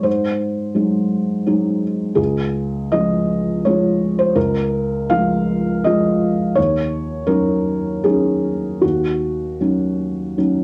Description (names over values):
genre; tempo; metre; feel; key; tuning
neoclassical minimalist piano; 76-86 BPM; 3/4; rubato; Db major; A4 = 440 Hz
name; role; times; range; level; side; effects
felt-muted upright piano; solo; 0.0-10.6 s; Db2 to F5; -19 LUFS; equal; none
room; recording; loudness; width
moderate studio reverb, RT60 0.5 s; home recording on cassette; -19 LUFS; mono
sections
0.0-10.6 A section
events
none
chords
0.0 Ab7; 2.2 Db; 6.6 Ebm7